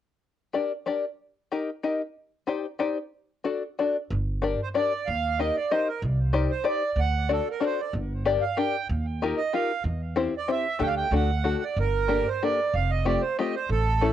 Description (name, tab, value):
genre	musette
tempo	187 BPM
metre	3/4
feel	straight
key	G minor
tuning	A4 = 440 Hz
part	open-back banjo	accompaniment	0.5-14.1 s	A3 to Eb5	-26 LUFS	left 5 dB	none
part	upright bass	bass	4.1-14.1 s	F1 to E2	-27 LUFS	right 1 dB	tube saturation
part	accordion	melody	4.6-14.1 s	A4 to G5	-28 LUFS	right 6 dB	none
room	moderate studio reverb, RT60 0.5 s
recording	home recording on cassette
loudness	-24 LUFS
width	side -11 dB against mid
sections	0.2-4.1 A section; 4.1-14.1 B section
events	none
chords	0.2 Gm; 1.2 Eb; 2.2 Cmadd9; 3.1 D; 4.1 Gm; 5.1 Eb; 6.0 Cmadd9; 7.0 D; 7.9 Gm; 8.9 Ebadd9; 9.9 C/E; 10.8 Dsus4; 11.1 D; 11.8 Gmadd9; 12.7 Fadd9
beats	| 0.22 0.54 0.87 | 1.20 1.52 1.84 | 2.16 2.49 2.81 | 3.13 3.45 3.78 | 4.11 4.43 4.75 | 5.07 5.39 5.71 | 6.03 6.34 6.66 | 6.98 7.30 7.62 | 7.95 8.27 8.59 | 8.91 9.23 9.54 | 9.86 10.17 10.49 | 10.81 11.12 11.45 | 11.77 12.09 12.41 | 12.73 13.05 13.37 | 13.69 14.00